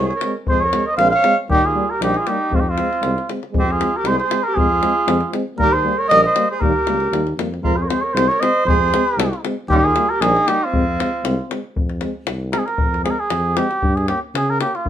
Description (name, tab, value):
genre	balkan folk, Balkan brass band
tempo	117 BPM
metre	2/4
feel	swing 53% on 16ths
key	F minor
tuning	A4 = 435 Hz
part	cornet with cup mute	melody	0.0-14.9 s	F4 to F5	-18 LUFS	right 1 dB	none
part	clear alto saxophone	second line	0.0-11.5 s	C4 to Db5	-25 LUFS	right 3 dB	none
part	mellow euphonium	accompaniment	0.0-14.7 s	Bb3 to Db4	-27 LUFS	left 6 dB	none
part	mellow euphonium	accompaniment	0.0-14.7 s	G3 to Bb3	-27 LUFS	right 5 dB	none
part	mellow tuba	bass	0.0-14.9 s	Bb1 to Db3	-23 LUFS	equal	none
part	davul	percussion	0.1-14.9 s	none	-23 LUFS	left 2 dB	none
room	moderate studio reverb, RT60 0.6 s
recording	minimal, uncompressed stereo recording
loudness	-16 LUFS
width	side -10 dB against mid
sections	0.0-3.5 A section; 3.5-11.8 A section; 11.8-14.9 B section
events	cornet solo 11.8-14.9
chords	0.0 Fm; 1.5 Eb; 2.5 Fm; 5.6 Eb; 7.6 Fm; 9.7 Eb; 10.7 Fm; 13.8 Gdim